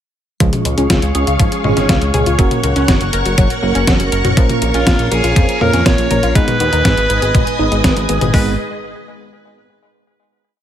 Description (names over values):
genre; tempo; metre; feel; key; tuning
italo disco; 121 BPM; 4/4; straight; G# dorian; A4 = 440 Hz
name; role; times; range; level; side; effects
string machine, full ensemble; sustained chords; 0.6-8.6 s; G#4 to D#6; -20 LUFS; equal; ensemble chorus
analog pluck; arpeggios; 0.4-8.6 s; E#3 to B4; -21 LUFS; left 2 dB; chorus, phaser, digital delay
bell-like tine electric piano; stabs; 0.4-8.5 s; G#3 to B4; -22 LUFS; right 5 dB; medium stereo tremolo, digital delay
fat analog bass; bass; 0.4-8.6 s; F#1 to E#2; -18 LUFS; equal; tube saturation
detuned 8-bit digital drum machine; drums; 0.4-8.5 s; hi-hat, kick drum; -15 LUFS; equal; overdrive
detuned 8-bit digital drum machine; drums; 0.4-8.3 s; hi-hat, snare drum, toms; -19 LUFS; left 2 dB; overdrive
bright alto saxophone; melody; 4.7-8.6 s; E#4 to C#5; -19 LUFS; equal; vintage 12-bit sampler grit, tape echo
room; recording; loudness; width
digital ambience; none; -11 LUFS; side -10 dB against mid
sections
0.4-8.3 verse; 8.3-10.3 final chord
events
none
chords
0.4 C#; 2.4 F#; 4.4 A#m; 6.4 G#m